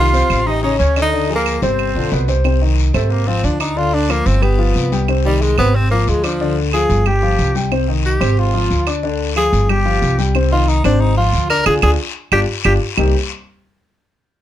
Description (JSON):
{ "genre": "Afro-Cuban jazz", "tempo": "182 BPM", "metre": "4/4", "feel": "straight", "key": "C minor", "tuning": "A4 = 440 Hz", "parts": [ { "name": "bright tenor saxophone", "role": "melody", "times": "0.0-12.7 s", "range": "F3 to Bb4", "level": "-18 LUFS", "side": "equal", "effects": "none" }, { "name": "breathy bright jazz flute", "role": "second line", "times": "0.0-2.2 s", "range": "Bb4 to F5", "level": "-24 LUFS", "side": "right 7 dB", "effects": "none" }, { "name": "warm concert grand piano", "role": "accompaniment", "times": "0.0-13.1 s", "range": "B2 to D6", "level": "-20 LUFS", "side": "left 4 dB", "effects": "none" }, { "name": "upright bass", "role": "bass", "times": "0.0-13.1 s", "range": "G1 to D2", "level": "-16 LUFS", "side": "right 1 dB", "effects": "none" }, { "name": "guiro", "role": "percussion", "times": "0.1-13.1 s", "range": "none", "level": "-29 LUFS", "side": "left 8 dB", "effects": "none" }, { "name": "claves", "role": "percussion", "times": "0.3-13.1 s", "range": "none", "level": "-23 LUFS", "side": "right 12 dB", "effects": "none" } ], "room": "light reverb", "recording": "dark, warm production", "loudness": "-13 LUFS", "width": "side -12 dB against mid", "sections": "0.0-2.4 A section; 2.4-13.0 B section; 13.0-14.3 C section", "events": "tenor saxophone solo 2.4-13.0; band accent 11.7-13.0", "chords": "0.5 A7; 1.1 Dm7b5; 1.8 G7; 2.4 Cm; 3.1 Ab6; 3.8 Gm7; 4.4 G7; 5.1 Cm; 5.7 Ab6; 6.4 Ddim; 7.1 G7sus4; 7.7 Cm; 8.4 Ab6; 9.0 Ddim; 9.7 G7sus4; 10.3 Cm; 11.0 Ab6; 11.7 Ddim; 12.3 G5; 13.0 Cm7" }